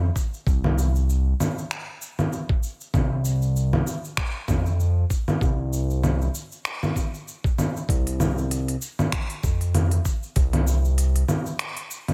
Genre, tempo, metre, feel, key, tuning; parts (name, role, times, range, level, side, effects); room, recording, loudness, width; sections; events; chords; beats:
organic downtempo; 97 BPM; 4/4; swing 56% on 16ths; A4 = 441 Hz
smooth synth bass; bass; 0.0-11.2 s; C2 to F2; -24 LUFS; equal; sidechain pumping
electronic kick drum; drums; 0.2-10.5 s; -26 LUFS; equal
organic electronic drum kit; drums; 0.2-12.1 s; congas, finger snaps, hi-hat, shaker; -29 LUFS; equal; overdrive
little or no reverb; -24 LUFS; mono
0.0-12.1 A section
| 0.47 1.08 1.70 2.32 | 2.94 3.56 4.18 4.79 | 5.41 6.03 6.65 7.27 | 7.89 8.51 9.12 9.74 | 10.36 10.98 11.60